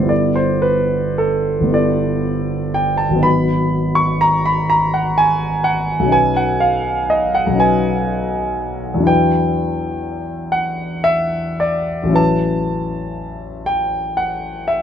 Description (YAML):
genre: classical, impressionist solo piano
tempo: 34-43 BPM (dotted quarters)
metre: 6/8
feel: rubato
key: E minor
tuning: A4 = 444 Hz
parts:
  - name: warm grand piano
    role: solo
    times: 0.0-14.8 s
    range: G1 to C#6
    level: -15 LUFS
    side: equal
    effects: none
room: light reverb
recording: dark, warm production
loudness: -15 LUFS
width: side -9 dB against mid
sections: 0.0-14.8 A section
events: none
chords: 0.1 G69; 3.3 G#m7; 6.1 B69; 9.1 Em9; 12.2 A69